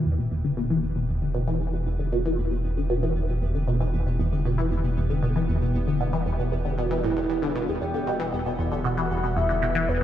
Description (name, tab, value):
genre	ambient, sequencer-driven space music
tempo	116 BPM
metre	4/4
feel	straight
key	E minor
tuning	A4 = 440 Hz
part	lush unison pad	sustained chords	0.0-10.0 s	B2 to G4	-35 LUFS	equal	chorus
part	warm sub bass	bass	0.0-10.0 s	E1	-29 LUFS	equal	none
part	pulsing gated texture	texture	0.0-10.0 s	B3 to B4	-40 LUFS	right 2 dB	chorus, built-in reverb
part	resonant blip pluck	riff	0.1-10.0 s	E2 to E3	-25 LUFS	equal	phaser, lush chorus, tape echo
part	soft octave-layered synth lead	melody	7.8-10.0 s	B4 to G5	-28 LUFS	left 2 dB	chorus, tremolo, tape echo
room	moderate scoring stage reverb, RT60 1.9 s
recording	dark, warm production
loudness	-23 LUFS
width	side -11 dB against mid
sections	0.0-10.0 A section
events	fade-in on analog synth pad 0.0-10.0; fade-in on synth texture 0.0-10.0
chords	0.0 Em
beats	0.05 0.57 1.09 | 1.60 2.12 2.64 3.16 | 3.67 4.19 4.71 5.23 | 5.74 6.26 6.78 7.29 | 7.81 8.33 8.85 9.36 | 9.88